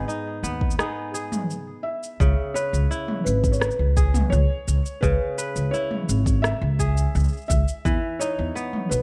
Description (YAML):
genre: folktronica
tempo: 85 BPM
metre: 4/4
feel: straight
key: unclear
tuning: A4 = 440 Hz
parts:
  - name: felt-muted upright piano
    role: melody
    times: 0.0-9.0 s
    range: B4 to E5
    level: -32 LUFS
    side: equal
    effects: digital delay
  - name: kora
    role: arpeggios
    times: 0.0-9.0 s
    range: G#2 to B4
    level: -33 LUFS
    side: equal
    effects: digital delay
  - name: organic electronic drum kit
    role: drums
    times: 0.1-9.0 s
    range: cabasa, rim click, toms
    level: -31 LUFS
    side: equal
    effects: none
  - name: upright bass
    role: bass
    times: 0.4-9.0 s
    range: G#1 to E2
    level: -24 LUFS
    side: equal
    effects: none
  - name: electronic kick drum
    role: drums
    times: 0.6-8.0 s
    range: none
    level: -25 LUFS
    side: equal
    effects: none
room: light reverb, small room ambience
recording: dark, warm production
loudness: -23 LUFS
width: mono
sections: 0.0-2.2 A section; 2.2-9.0 B section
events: break 0.8-2.2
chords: 0.0 G#m; 2.2 C#m7; 7.9 Emaj7